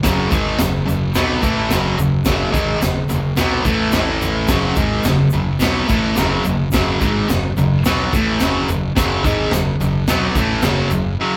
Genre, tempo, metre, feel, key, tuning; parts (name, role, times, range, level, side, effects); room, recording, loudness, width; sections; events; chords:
garage rock duo or trio; 108 BPM; 4/4; straight; F# minor; A4 = 440 Hz
fuzz guitar; riff; 0.0-11.4 s; F#2 to B3; -19 LUFS; equal; distortion
fuzz fingered electric bass; bass; 0.0-11.2 s; F#1 to B1; -27 LUFS; equal; overdrive
crunchy breakbeat drum kit; drums; 0.0-11.0 s; kick drum, snare drum, toms; -23 LUFS; equal
egg shaker; percussion; 0.0-11.0 s; -35 LUFS; equal
light reverb; band playing live in one room; -17 LUFS; mono
0.0-11.4 A section
0.0 F#m; 3.9 A5; 4.5 F#m